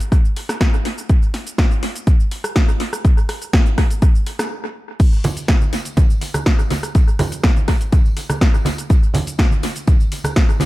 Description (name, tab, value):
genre	house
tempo	123 BPM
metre	4/4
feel	straight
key	none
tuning	none
part	punchy analog drum machine	drums	0.0-10.7 s	cabasa, crash cymbal, hi-hat, rim click, snare drum	-23 LUFS	equal	sidechain pumping on hats, sidechain pumping on perc, sidechain pumping on cymbals, tape echo
part	electronic kick drum	drums	0.1-10.5 s	none	-14 LUFS	equal	none
part	tambourine and congas	percussion	5.0-10.7 s	none	-24 LUFS	right 2 dB	sidechain pumping on perc, low-pass filter on perc, tape echo
room	little or no reverb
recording	echo-heavy mix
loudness	-14 LUFS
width	side -18 dB against mid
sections	0.0-5.0 A section; 5.0-10.7 B section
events	build-up 0.0-5.0; stop 4.5-5.0; drop 5.0-10.7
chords	none